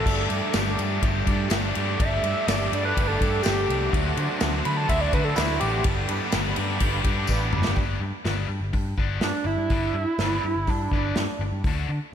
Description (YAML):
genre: indie rock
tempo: 124 BPM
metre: 4/4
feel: straight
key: G major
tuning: A4 = 439 Hz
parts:
  - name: overdriven synth lead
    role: melody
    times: 0.0-5.8, 9.2-11.4 s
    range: D4 to B5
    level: -28 LUFS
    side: right 2 dB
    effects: slapback echo
  - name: lush unison pad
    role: sustained chords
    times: 0.0-7.8 s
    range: A4 to D6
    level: -37 LUFS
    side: equal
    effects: none
  - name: distorted electric guitar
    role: riff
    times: 0.0-11.9 s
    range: G2 to B4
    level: -31 LUFS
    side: left 8 dB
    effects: distortion, slapback echo
  - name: overdriven electric guitar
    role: riff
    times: 0.0-7.8 s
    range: D3 to C5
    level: -31 LUFS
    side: right 7 dB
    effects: ensemble chorus, slapback echo, tape echo
  - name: picked electric bass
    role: bass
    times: 0.1-12.0 s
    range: G1 to D3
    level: -28 LUFS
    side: equal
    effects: none
  - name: unplugged drum kit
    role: drums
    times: 0.1-11.8 s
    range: crash cymbal, hi-hat, kick drum, ride cymbal, snare drum, toms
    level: -27 LUFS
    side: equal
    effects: none
  - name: tambourine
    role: percussion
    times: 0.5-7.4 s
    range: none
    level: -41 LUFS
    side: left 9 dB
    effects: none
room: moderate lush hall reverb, RT60 2.4 s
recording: big arena sound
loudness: -22 LUFS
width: side -9 dB against mid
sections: 0.0-7.8 A section; 7.8-12.1 B section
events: analog synth lead solo 0.0-7.8; drum fill 7.3-7.8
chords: 0.1 Gsus2; 3.9 D7; 5.8 Gadd9; 7.8 G6